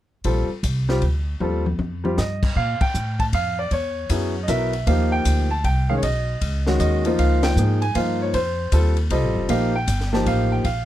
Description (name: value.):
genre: jazz piano trio.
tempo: 156 BPM.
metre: 3/4.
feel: swing 65% on 8ths.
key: unclear.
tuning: A4 = 437 Hz.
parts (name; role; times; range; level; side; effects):
warm baby grand piano; melody; 0.2-10.8 s; Eb3 to A5; -22 LUFS; equal; none.
upright bass; bass; 0.2-10.8 s; F1 to Bb2; -22 LUFS; equal; none.
compact cocktail drum kit; drums; 0.2-10.8 s; crash cymbal, hi-hat, kick drum, ride cymbal, snare drum, toms; -28 LUFS; left 1 dB; none.
room: little or no reverb.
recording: close, detailed microphones.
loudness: -19 LUFS.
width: side -13 dB against mid.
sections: 0.2-2.6 A section; 2.6-10.8 B section.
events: drum fill 1.4-2.2; band accent 2.8, 7.4.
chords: 0.2 Bb; 1.4 Eb69; 2.6 Bb5; 3.7 Esus2; 4.9 Eb6; 6.0 Badd9; 7.2 Db; 8.3 F9; 9.5 Bbmaj7(no3).